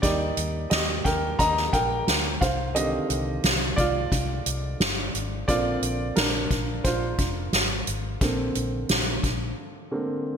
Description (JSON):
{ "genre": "piano-driven pop", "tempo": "88 BPM", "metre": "4/4", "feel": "straight", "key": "unclear", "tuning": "A4 = 441 Hz", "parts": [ { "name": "warm upright piano", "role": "accompaniment", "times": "0.0-10.4 s", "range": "D3 to Bb5", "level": "-27 LUFS", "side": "right 1 dB", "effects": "none" }, { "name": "vintage muted fingered electric bass", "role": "bass", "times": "0.0-9.5 s", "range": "F1 to Eb2", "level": "-30 LUFS", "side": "left 1 dB", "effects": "none" }, { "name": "soft-mallet drum kit", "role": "drums", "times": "0.0-9.4 s", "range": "hi-hat, kick drum, snare drum", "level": "-25 LUFS", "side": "equal", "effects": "gated reverb" } ], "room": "moderate lush hall reverb, RT60 2.3 s", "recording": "bright 1980s-style digital production", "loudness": "-22 LUFS", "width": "side -7 dB against mid", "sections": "0.0-10.4 A section", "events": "upright piano solo 0.0-10.4; break 9.6-10.4", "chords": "0.0 Eb; 2.4 Cmadd9; 5.5 Bbadd9" }